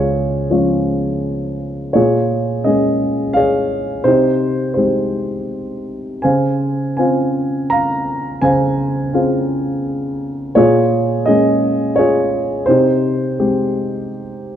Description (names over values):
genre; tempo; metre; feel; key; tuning
classical, lyrical solo piano; 84 BPM; 3/4; rubato; unclear; A4 = 440 Hz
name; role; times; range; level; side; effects
dark concert grand piano; solo; 0.0-14.6 s; Db2 to Bb5; -14 LUFS; equal; none
room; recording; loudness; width
moderate scoring stage reverb, RT60 2.2 s; dark, warm production; -14 LUFS; side -10 dB against mid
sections
0.0-14.6 A section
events
none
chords
0.0 Dbmaj7; 2.0 Bbm7; 4.1 Abmaj7/C; 6.2 Dbmaj7; 10.6 Bbm7; 12.7 Abmaj7/C